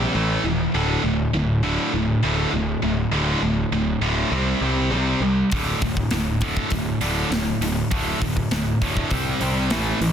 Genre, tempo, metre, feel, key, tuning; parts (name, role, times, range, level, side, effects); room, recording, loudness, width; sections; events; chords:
heavy metal; 100 BPM; 4/4; straight; A4 = 439 Hz
heavy high-gain guitar; riff; 0.0-10.1 s; D2 to C4; -21 LUFS; equal; distortion
fuzz picked electric bass; bass; 0.0-10.1 s; D1 to C2; -25 LUFS; equal; overdrive
tight metal drum kit; drums; 5.5-10.1 s; hi-hat, kick drum, snare drum; -26 LUFS; equal
light reverb, small room ambience; dense, heavily limited modern master; -19 LUFS; side -8 dB against mid
0.0-10.1 A section
0.1 A5; 0.7 D5; 4.3 C5; 5.5 D5; 9.1 C5